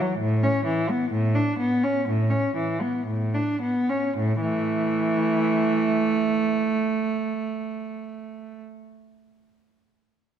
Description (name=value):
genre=classical, baroque-style suite movement for unaccompanied cello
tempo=54-68 BPM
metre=4/4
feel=rubato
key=A major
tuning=A4 = 440 Hz
part: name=warm cello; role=solo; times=0.0-8.6 s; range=A2 to D4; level=-22 LUFS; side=right 1 dB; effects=none
room=wet recital hall reverb, RT60 1.4 s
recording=none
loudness=-22 LUFS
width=side -8 dB against mid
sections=0.0-4.2 A section; 4.2-8.5 B section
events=slowing down 0.0-4.2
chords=0.2 A; 4.2 A5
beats=| 0.19 1.11 2.06 3.07 | 4.15 5.24 6.34 7.42